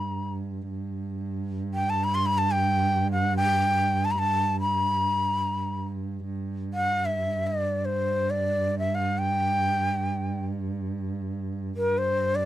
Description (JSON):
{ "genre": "Arabic maqam ensemble", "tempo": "free time", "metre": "none", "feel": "none", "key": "G maqam rast", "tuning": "A4 = 440 Hz", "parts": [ { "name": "breathy bright ney", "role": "melody", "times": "0.0-12.5 s", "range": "Bb4+42c to C6", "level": "-25 LUFS", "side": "left 1 dB", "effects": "none" }, { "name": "dark cello", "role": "drone", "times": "0.0-12.5 s", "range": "G2", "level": "-28 LUFS", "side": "right 2 dB", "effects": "none" } ], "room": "light reverb", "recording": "dry, close 1970s-style studio recording", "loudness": "-24 LUFS", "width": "side -13 dB against mid", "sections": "0.0-12.5 A section", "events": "none", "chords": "none" }